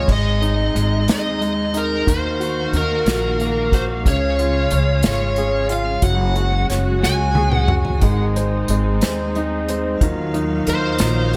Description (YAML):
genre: six-eight pop ballad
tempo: 60 BPM (dotted quarters)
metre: 6/8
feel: straight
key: unclear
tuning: A4 = 436 Hz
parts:
  - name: bluesy overdriven lead guitar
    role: melody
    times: 0.0-11.4 s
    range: Bb4 to Ab5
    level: -25 LUFS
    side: equal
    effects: distortion, digital delay
  - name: clear grand piano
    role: accompaniment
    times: 0.0-11.4 s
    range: Db3 to Db5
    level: -26 LUFS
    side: equal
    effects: none
  - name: rich studio string section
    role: sustained chords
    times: 0.1-11.4 s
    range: Db3 to F5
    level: -29 LUFS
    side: equal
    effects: none
  - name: upright bass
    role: bass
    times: 0.1-11.4 s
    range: Gb1 to Eb2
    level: -24 LUFS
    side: equal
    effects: none
  - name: unplugged drum kit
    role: drums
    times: 0.1-11.4 s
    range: crash cymbal, hi-hat, kick drum, snare drum, toms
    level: -23 LUFS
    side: equal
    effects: none
  - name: fingerpicked steel-string acoustic guitar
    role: arpeggios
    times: 8.0-11.4 s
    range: Eb3 to Ab4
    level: -30 LUFS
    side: equal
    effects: none
room: light reverb, small room ambience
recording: none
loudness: -19 LUFS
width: mono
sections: 0.1-11.4 A section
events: drum fill 7.0-8.0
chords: 0.1 Ab; 2.1 Ebmadd9; 4.1 Db; 6.0 Gbsus2; 8.0 Ab; 10.0 Ebmadd9